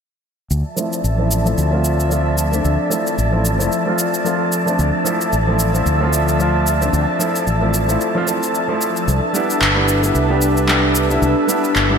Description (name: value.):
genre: sunset chillout.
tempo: 112 BPM.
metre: 4/4.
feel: swing 57% on 16ths.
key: D dorian.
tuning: A4 = 440 Hz.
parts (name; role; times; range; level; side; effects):
airy breathy pad; sustained chords; 0.5-12.0 s; F3 to A5; -21 LUFS; equal; chorus.
fretless electric bass; bass; 0.5-12.0 s; G1 to D2; -18 LUFS; equal; none.
electronic cabasa and handclaps; drums; 0.5-11.9 s; none; -21 LUFS; equal; gated reverb.
wind-like tuned noise texture; texture; 0.9-12.0 s; A4 to A5; -25 LUFS; equal; built-in reverb.
warm grand piano; accompaniment; 0.8-12.0 s; F3 to G4; -20 LUFS; right 1 dB; auto-pan, low-pass filter, digital delay.
room: moderate lush hall reverb, RT60 2.2 s.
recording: bright 1980s-style digital production.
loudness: -15 LUFS.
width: side -6 dB against mid.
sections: 0.5-12.0 A section.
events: filter sweep on grand piano 0.5-12.0.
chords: 0.5 Dm9; 9.1 Cmaj9.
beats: | 0.51 1.04 1.58 2.11 | 2.65 3.19 3.72 4.26 | 4.79 5.33 5.86 6.40 | 6.93 7.47 8.01 8.54 | 9.08 9.61 10.15 10.69 | 11.22 11.76.